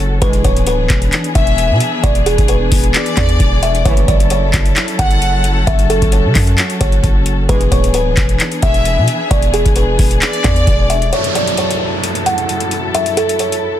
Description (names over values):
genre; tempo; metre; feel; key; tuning
hip hop, trap; 132 BPM; 4/4; half-time; F# minor; A4 = 440 Hz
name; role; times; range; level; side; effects
buzzing kalimba; melody; 0.0-13.8 s; G#4 to F#5; -18 LUFS; equal; low-pass filter, tape echo
dark studio string section; sustained chords; 0.0-13.8 s; F#2 to A4; -21 LUFS; left 2 dB; none
hard-hitting 808-style bass; bass; 0.0-11.1 s; D1 to C#3; -16 LUFS; equal; none
warm brass ensemble; stabs; 0.2-0.5, 3.9-4.2, 7.5-7.8 s; A2 to G#3; -25 LUFS; right 6 dB; tape echo
booming analog drum machine; drums; 0.2-13.6 s; handclaps, hi-hat, kick drum; -14 LUFS; equal; overdrive
warm studio violin section; second line; 1.4-5.6, 8.6-11.1 s; D5 to F#5; -22 LUFS; left 2 dB; tape echo
downlifter; sound effects; 11.1-13.8 s; none; -21 LUFS; right 1 dB; none
room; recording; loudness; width
small room ambience; dense, heavily limited modern master; -11 LUFS; side -11 dB against mid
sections
0.0-11.1 A section; 11.1-13.8 B section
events
none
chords
0.2 E7; 3.9 F#m7; 7.5 E7; 11.1 F#m7